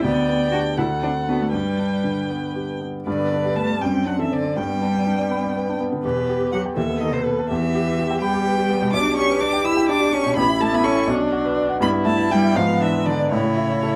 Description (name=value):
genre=quick classical-period movement for piano quartet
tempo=77-85 BPM (dotted quarters)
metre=6/8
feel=rubato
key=G major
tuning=A4 = 443 Hz
part: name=rich violin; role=melody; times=0.0-14.0 s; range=A4 to E6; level=-27 LUFS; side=equal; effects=none
part: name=rich cello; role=second line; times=0.0-14.0 s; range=B2 to F#4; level=-26 LUFS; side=equal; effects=none
part: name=clear grand piano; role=accompaniment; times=0.0-14.0 s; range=A1 to B5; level=-25 LUFS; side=equal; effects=none
part: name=rich viola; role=accompaniment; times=0.0-14.0 s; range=B3 to G5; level=-29 LUFS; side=equal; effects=none
room=moderate studio ambience, RT60 0.5 s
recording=none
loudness=-21 LUFS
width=mono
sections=0.0-3.1 A section; 3.1-14.0 B section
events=none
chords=0.0 G/D; 0.8 D7; 1.5 G; 3.8 D7/F#; 4.6 G; 6.0 Em; 6.8 B7/D#; 7.5 Em; 8.9 G/B; 10.4 A5; 11.1 Bm; 11.8 Em/G; 12.6 G#dim; 13.3 A